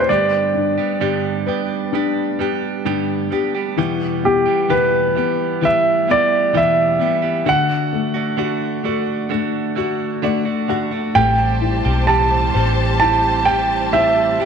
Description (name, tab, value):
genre	pop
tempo	65 BPM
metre	4/4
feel	straight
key	G major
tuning	A4 = 443 Hz
part	clear concert grand piano	melody	0.0-14.5 s	G4 to A5	-17 LUFS	right 2 dB	none
part	felt-muted upright piano	accompaniment	0.0-14.5 s	D3 to F#5	-22 LUFS	left 10 dB	none
part	direct-recorded clean electric guitar	arpeggios	0.0-14.5 s	E2 to G4	-23 LUFS	right 10 dB	none
part	warm studio string section	sustained chords	11.2-14.5 s	G4 to A5	-24 LUFS	left 2 dB	none
part	vintage muted fingered electric bass	bass	11.2-14.4 s	A1 to B1	-20 LUFS	left 1 dB	none
room	wet plate reverb, RT60 2.8 s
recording	1960s-style stereo with parts hard left and right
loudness	-15 LUFS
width	side -6 dB against mid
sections	0.0-14.5 A section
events	felt piano fill 9.8-11.2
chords	0.1 G; 3.8 Em; 7.5 D; 11.2 Am7